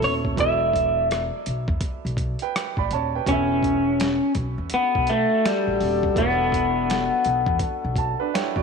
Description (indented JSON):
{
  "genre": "R&B, neo-soul",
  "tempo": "83 BPM",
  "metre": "4/4",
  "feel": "swing 62% on 16ths",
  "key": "E dorian",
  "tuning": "A4 = 442 Hz",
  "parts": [
    { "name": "electric guitar through a small old amp", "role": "melody", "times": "0.0-7.6 s", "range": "G3 to E5", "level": "-22 LUFS", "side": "left 1 dB", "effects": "none" },
    { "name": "clear concert grand piano", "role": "accompaniment", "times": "0.0-8.6 s", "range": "F#3 to B5", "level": "-30 LUFS", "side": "right 12 dB", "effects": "none" },
    { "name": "upright bass", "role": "bass", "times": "0.0-8.6 s", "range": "D#1 to E2", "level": "-28 LUFS", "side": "equal", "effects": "transformer saturation" },
    { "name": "dusty soul sampler-style drum kit", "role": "drums", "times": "0.0-8.6 s", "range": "finger snaps, hi-hat, kick drum, rim click, snare drum", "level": "-28 LUFS", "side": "equal", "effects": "overdrive" },
    { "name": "warm horn section", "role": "stabs", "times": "4.7-8.6 s", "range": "D4 to A4", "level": "-31 LUFS", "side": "left 12 dB", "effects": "none" }
  ],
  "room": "moderate echo chamber reverb, RT60 2.0 s",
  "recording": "1960s-style stereo with parts hard left and right",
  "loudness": "-20 LUFS",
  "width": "side -5 dB against mid",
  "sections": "0.0-3.3 A section; 3.3-8.6 A section",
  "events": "grand piano fill 7.6-8.6",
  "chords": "0.4 Esus2"
}